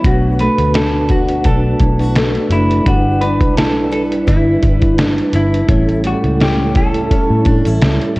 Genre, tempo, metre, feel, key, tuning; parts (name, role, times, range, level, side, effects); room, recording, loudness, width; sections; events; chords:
indie pop, bedroom pop; 85 BPM; 4/4; swing 55% on 16ths; A4 = 441 Hz
semi-hollow electric guitar; melody; 0.0-8.2 s; E4 to B4; -20 LUFS; equal; lush chorus, tape echo
mellow tonewheel organ; accompaniment; 0.0-8.2 s; G3 to B4; -19 LUFS; right 2 dB; chorus vibrato, stopped rotary speaker, cassette tape
picked steel-string acoustic guitar; accompaniment; 0.0-8.2 s; A2 to B4; -20 LUFS; left 2 dB; lush chorus, vibrato effect
vintage muted picked electric bass; bass; 0.0-8.2 s; F#1 to A2; -17 LUFS; equal
lo-fi sampler-style drum kit; drums; 0.0-8.2 s; hi-hat, kick drum, snare drum; -16 LUFS; equal
light reverb, digital ambience; worn, warbling old tape, cassette tape, warbly pitch drift; -11 LUFS; side -21 dB against mid
0.0-8.2 A section
0.0 Bm7; 2.9 G6; 5.7 A7